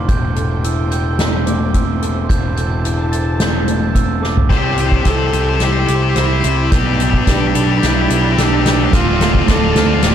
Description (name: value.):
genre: post-rock.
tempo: 109 BPM.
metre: 4/4.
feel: straight.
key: unclear.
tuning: A4 = 440 Hz.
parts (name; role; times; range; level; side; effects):
warm symphonic string section; sustained chords; 0.0-10.1 s; F3 to B5; -29 LUFS; equal; none.
glockenspiel with soft plastic mallets; arpeggios; 0.0-10.1 s; D6 to A6; -25 LUFS; right 8 dB; digital delay.
mellow electric guitar; arpeggios; 0.0-10.1 s; D2 to C5; -24 LUFS; equal; digital delay.
fuzz picked electric bass; bass; 0.0-10.1 s; D1 to D2; -18 LUFS; equal; overdrive.
soft-mallet drum kit; drums; 0.1-10.1 s; crash cymbal, hi-hat, kick drum, snare drum, toms; -18 LUFS; equal; none.
dark cello; melody; 4.5-10.1 s; B3 to A4; -20 LUFS; right 1 dB; digital delay.
distorted electric guitar; riff; 4.5-10.1 s; C4 to C5; -20 LUFS; left 13 dB; overdrive.
sludgy distorted guitar; riff; 8.9-10.1 s; D2 to A2; -20 LUFS; right 13 dB; overdrive.
room: little or no reverb.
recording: dark, warm production.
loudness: -13 LUFS.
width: side -9 dB against mid.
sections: 0.0-4.5 A section; 4.5-10.1 B section.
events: drum fill 4.2, 4.5-10.1; build-up 4.5-10.1.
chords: 0.1 Am7/E; 4.5 C; 6.7 G/B; 8.9 Dm7.